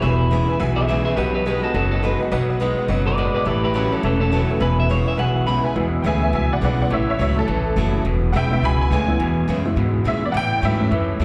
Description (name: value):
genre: rock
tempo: 209 BPM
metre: 4/4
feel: swing 61% on 8ths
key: E major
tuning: A4 = 440 Hz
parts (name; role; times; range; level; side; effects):
- electric guitar through a small old amp; melody; 0.0-5.8 s; C#4 to B5; -26 LUFS; equal; spring reverb, slapback echo, analog delay
- honky-tonk upright piano; accompaniment; 0.0-11.2 s; G#3 to B5; -27 LUFS; equal; none
- picked steel-string acoustic guitar; accompaniment; 0.0-11.2 s; E2 to F#4; -30 LUFS; equal; none
- electric guitar at the edge of break-up; riff; 0.0-11.2 s; E2 to G#3; -27 LUFS; equal; slapback echo
- upright bass; bass; 0.0-11.2 s; E1 to A#2; -24 LUFS; equal; none
room: light reverb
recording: live gig heard through the venue's PA, recital hall reverb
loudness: -20 LUFS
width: mono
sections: 0.0-5.8 A section; 5.8-11.2 B section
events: honky-tonk piano solo 5.8-11.2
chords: 0.0 E; 1.2 B; 3.5 A; 4.6 E; 6.9 A; 8.1 E; 10.3 A